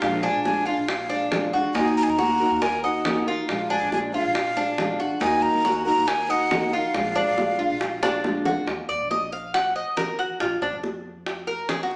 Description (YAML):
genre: latin, Cuban son and guajira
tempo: 139 BPM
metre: 4/4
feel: straight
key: Eb harmonic minor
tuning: A4 = 440 Hz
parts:
  - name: breathy mellow jazz flute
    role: melody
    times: 0.0-8.2 s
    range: F5 to Bb5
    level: -27 LUFS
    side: equal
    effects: analog delay
  - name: nylon-string guitar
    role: accompaniment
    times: 0.0-8.7 s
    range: Eb3 to Bb4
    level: -29 LUFS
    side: equal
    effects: none
  - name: Cuban tres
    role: arpeggios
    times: 0.0-12.0 s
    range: D4 to Gb5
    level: -29 LUFS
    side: equal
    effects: none
  - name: upright bass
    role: bass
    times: 0.0-11.5 s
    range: Bb1 to F2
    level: -41 LUFS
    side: equal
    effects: none
  - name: bongos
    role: percussion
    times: 0.0-12.0 s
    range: none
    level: -32 LUFS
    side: equal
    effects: none
room: wet large studio reverb, RT60 1.1 s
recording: band playing live in one room, small speaker sound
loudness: -24 LUFS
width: mono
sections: 0.0-8.7 A section; 8.7-12.0 B section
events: drum fill 8.0-8.7; Cuban tres solo 8.7-12.0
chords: 0.0 Bb7; 1.7 Ebm; 3.5 Bb7; 5.2 Ebm; 6.9 Bb7; 8.7 Eb5; 10.4 Bb5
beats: | 0.01 0.45 0.88 1.31 | 1.75 2.18 2.62 3.05 | 3.48 3.92 4.35 4.78 | 5.22 5.65 6.08 6.51 | 6.95 7.38 7.81 8.24 | 8.67 9.10 9.53 9.97 | 10.40 10.83 11.26 11.69